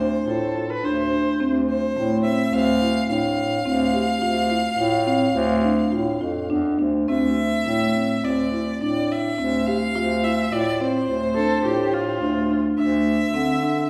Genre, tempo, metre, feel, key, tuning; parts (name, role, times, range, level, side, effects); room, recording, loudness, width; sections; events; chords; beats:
contemporary instrumental, chamber music in an uneven meter; 106 BPM; 5/4; straight; D minor; A4 = 444 Hz
clear violin; melody; 0.0-13.9 s; C5 to F5; -28 LUFS; equal
marimba with soft mallets; arpeggios; 0.0-13.8 s; A3 to G4; -26 LUFS; equal
warm bass clarinet; bass; 0.0-13.8 s; D2 to D3; -26 LUFS; equal
rich viola; second line; 0.3-1.5, 11.4-12.6 s; F4 to C5; -29 LUFS; equal
wet recital hall reverb, RT60 1.6 s; heard from further back in the room; -22 LUFS; mono
0.0-7.1 A section; 7.1-13.9 B section
0.0 Dm7; 12.8 D7sus2
0.27 0.83 | 1.40 1.96 2.52 3.09 3.65 | 4.21 4.78 5.35 5.92 6.51 | 7.09 7.67 8.24 8.81 9.38 | 9.95 10.52 11.08 11.65 12.21 | 12.78 13.34